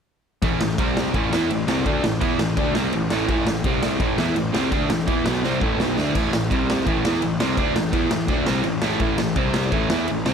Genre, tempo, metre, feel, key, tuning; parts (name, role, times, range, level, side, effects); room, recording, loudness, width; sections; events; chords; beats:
punk rock; 168 BPM; 4/4; straight; A minor; A4 = 440 Hz
crunchy overdriven guitar; riff; 0.4-10.3 s; A2 to E4; -24 LUFS; right 9 dB
sludgy distorted guitar; riff; 0.4-10.3 s; A2 to E4; -25 LUFS; left 14 dB; overdrive
fuzz picked electric bass; bass; 0.4-10.3 s; A1 to E2; -28 LUFS; left 1 dB; overdrive
raw garage drum kit; drums; 0.4-10.3 s; crash cymbal, kick drum, ride cymbal, snare drum; -24 LUFS; equal
light reverb; -19 LUFS; side -7 dB against mid
0.4-10.3 A section
drum fill 5.4-6.2
0.4 A5; 0.8 C5; 1.1 Am; 3.6 C5; 4.0 Am; 6.5 C5; 6.9 Am; 9.4 C5; 9.7 Am
| 0.42 0.78 1.14 1.50 | 1.86 2.22 2.57 2.93 | 3.29 3.65 4.00 4.36 | 4.72 5.08 5.44 5.79 | 6.15 6.51 6.87 7.22 | 7.58 7.94 8.30 8.66 | 9.02 9.37 9.73 10.09